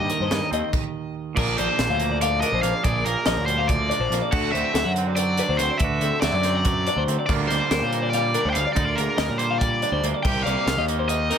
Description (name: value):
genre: math rock and midwest emo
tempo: 284 BPM (eighths)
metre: 7/8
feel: straight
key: unclear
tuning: A4 = 440 Hz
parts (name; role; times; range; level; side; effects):
- overdriven electric guitar; melody; 0.0-11.4 s; Bb4 to G5; -25 LUFS; equal; none
- twangy electric guitar; accompaniment; 0.0-11.4 s; Eb2 to Ab4; -29 LUFS; right 10 dB; none
- twelve-string electric guitar; arpeggios; 0.0-11.4 s; G4 to F#5; -28 LUFS; left 8 dB; none
- fuzz picked electric bass; bass; 0.0-11.3 s; Bb1 to Bb2; -26 LUFS; equal; overdrive
- crisp fusion drum kit; drums; 0.1-11.4 s; crash cymbal, hi-hat, kick drum, snare drum; -27 LUFS; equal; none
room: light reverb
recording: none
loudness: -20 LUFS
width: side -8 dB against mid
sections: 0.0-1.4 A section; 1.4-11.4 B section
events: stop 0.7-1.4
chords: 0.0 Eb6; 1.4 Bb7; 4.3 D7; 7.3 Gm7/D; 10.2 Cm7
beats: 0.10 0.31 0.52 0.73 0.95 1.16 | 1.37 1.58 1.79 2.00 2.21 2.43 2.64 | 2.85 3.06 3.27 3.48 3.69 3.90 4.12 | 4.33 4.54 4.75 4.96 5.17 5.38 5.60 | 5.81 6.02 6.23 6.44 6.65 6.87 7.08 | 7.29 7.50 7.71 7.92 8.13 8.35 8.56 | 8.77 8.98 9.19 9.40 9.62 9.83 10.04 | 10.25 10.46 10.67 10.88 11.10 11.31